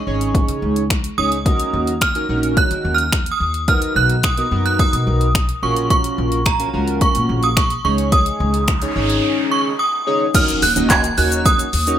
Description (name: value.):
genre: dance-pop.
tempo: 108 BPM.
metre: 4/4.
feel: straight.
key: Eb minor.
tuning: A4 = 441 Hz.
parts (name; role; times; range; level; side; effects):
synth chime; melody; 0.0-12.0 s; Bb5 to Ab6; -19 LUFS; right 2 dB; ensemble chorus, tremolo, ping-pong delay.
chorused polysynth; accompaniment; 0.0-12.0 s; B3 to Eb5; -22 LUFS; right 1 dB; sidechain pumping.
upright bass; bass; 0.1-12.0 s; Ab1 to Eb3; -21 LUFS; left 1 dB; sidechain pumping.
deep house drum kit; drums; 0.2-12.0 s; crash cymbal, finger snaps, handclaps, hi-hat, kick drum, shaker; -18 LUFS; left 1 dB; none.
noise sweep and impact; sound effects; 8.5-12.0 s; none; -28 LUFS; equal; none.
room: little or no reverb.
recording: none.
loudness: -15 LUFS.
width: side -10 dB against mid.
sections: 0.0-10.3 A section; 10.3-12.0 B section.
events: noise sweep 8.5-10.3; impact 10.3-12.0.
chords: 0.0 Dbsus2; 1.5 Ebm7; 3.7 Bmaj7; 5.6 Gbmaj7/Bb; 7.8 Dbsus2; 10.3 Ebm7.